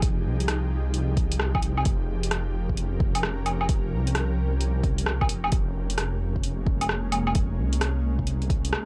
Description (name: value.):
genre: future garage.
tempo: 131 BPM.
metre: 4/4.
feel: swing 65% on 16ths.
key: unclear.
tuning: A4 = 439 Hz.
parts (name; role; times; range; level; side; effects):
ethereal airy pad; sustained chords; 0.0-8.9 s; F3 to Bb4; -35 LUFS; equal; ensemble chorus, built-in reverb, sidechain pumping.
dark detuned saw bass; bass; 0.0-8.7 s; F1 to C2; -29 LUFS; equal; tube saturation, sidechain pumping.
deep house drum kit; drums; 0.0-8.8 s; hi-hat, rim click, woodblock; -30 LUFS; equal; none.
electronic kick drum; drums; 0.0-8.6 s; none; -28 LUFS; equal; none.
room: little or no reverb.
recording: dry, gritty hardware recording.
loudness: -26 LUFS.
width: mono.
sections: 0.0-8.9 A section.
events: none.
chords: 0.0 Fm9; 1.9 Bbm69/F; 5.5 Bbm9/F.